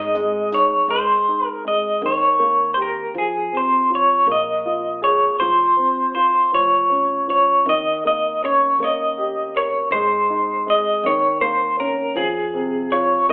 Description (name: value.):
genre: acoustic folk-pop ballad.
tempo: 53 BPM (dotted quarters).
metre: 6/8.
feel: straight.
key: Ab major.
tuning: A4 = 441 Hz.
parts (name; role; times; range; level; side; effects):
electric guitar through a small old amp; melody; 0.0-13.3 s; Ab4 to Eb5; -19 LUFS; equal; tremolo.
warm French horn; second line; 0.0-0.5 s; none; barely audible; none; none.
dark upright piano; accompaniment; 0.0-13.3 s; C3 to Bb4; -28 LUFS; equal; none.
upright bass; bass; 0.0-13.3 s; F1 to F2; -45 LUFS; equal; none.
hi-hat; drums; 0.1-0.7 s; none; -46 LUFS; equal; none.
room: wet large studio reverb, RT60 0.8 s.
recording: band playing live in one room, telephone sound.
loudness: -19 LUFS.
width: mono.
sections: 0.9-9.9 A section; 9.9-13.3 B section.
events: none.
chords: 0.0 Ab; 2.0 Eb7; 3.2 F5; 4.3 Bb5; 5.4 F5; 6.5 Db/F; 7.7 Eb7; 9.9 Ab; 11.0 Eb5; 12.2 Fm.